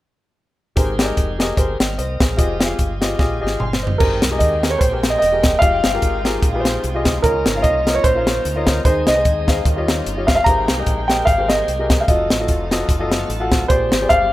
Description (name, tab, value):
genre	uptempo gospel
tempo	148 BPM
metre	4/4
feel	swing 56% on 8ths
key	Ab major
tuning	A4 = 435 Hz
part	warm upright piano	accompaniment	0.8-14.3 s	Ab2 to C6	-23 LUFS	left 2 dB	none
part	bright tonewheel organ	sustained chords	0.8-14.3 s	G3 to A5	-34 LUFS	right 1 dB	fast rotary speaker, overdrive
part	deep dub fingered electric bass	bass	0.8-14.3 s	Fb1 to Eb2	-25 LUFS	equal	none
part	crisp fusion drum kit	drums	0.8-14.2 s	crash cymbal, hi-hat, kick drum, snare drum, toms	-18 LUFS	equal	none
part	warm baby grand piano	melody	4.0-14.3 s	Bb4 to Bb5	-18 LUFS	right 1 dB	tape echo
part	dark studio string section	sustained chords	4.0-14.3 s	F3 to G5	-32 LUFS	equal	none
room	light reverb, small room ambience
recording	rough home demo mix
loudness	-15 LUFS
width	side -16 dB against mid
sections	0.8-4.0 A section; 4.0-14.3 B section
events	drum fill 3.2-4.0; tonewheel organ fill 6.6-7.2, 12.9-13.7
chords	0.8 Abmaj9; 2.4 Fm9; 4.0 Abmaj9; 5.6 Fm9; 7.2 Db69; 8.9 Ab; 9.7 Eb9; 10.5 Abmaj9; 12.1 F7b9; 13.7 Bb13